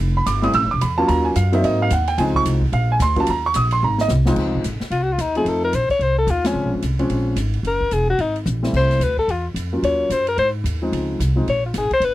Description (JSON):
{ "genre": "jazz, small-group swing and bop", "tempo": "220 BPM", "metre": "4/4", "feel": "swing 61% on 8ths", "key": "Db major", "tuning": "A4 = 445 Hz", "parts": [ { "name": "upright bass", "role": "bass", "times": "0.0-12.1 s", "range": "E1 to Ab2", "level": "-21 LUFS", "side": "equal", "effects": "none" }, { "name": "warm grand piano", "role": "accompaniment", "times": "0.2-11.5 s", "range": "Db2 to E6", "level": "-20 LUFS", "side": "right 1 dB", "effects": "none" }, { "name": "open jazz drum kit", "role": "drums", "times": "0.3-12.1 s", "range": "crash cymbal, hi-hat, kick drum, ride cymbal, snare drum, toms", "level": "-31 LUFS", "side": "equal", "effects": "none" }, { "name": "breathy alto saxophone", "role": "melody", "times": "4.9-12.1 s", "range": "Db4 to Db5", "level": "-19 LUFS", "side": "left 2 dB", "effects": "none" } ], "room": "light reverb", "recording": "dry, close 1970s-style studio recording", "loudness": "-17 LUFS", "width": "side -15 dB against mid", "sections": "0.0-4.4 A section; 4.4-12.1 B section", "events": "drum fill 3.8-4.4, 8.5; band accent 6.4", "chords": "0.0 Fmaj7; 1.1 Ebm7; 1.6 Ab7; 2.2 Dbmaj7; 2.7 Bb; 3.3 Eb5; 3.8 Ab; 4.4 Dbmaj7; 5.5 F7; 6.6 Bbm7; 7.6 Gb9; 8.7 Fmaj7; 9.8 Ebm7; 10.4 Ab; 10.9 Dbmaj7" }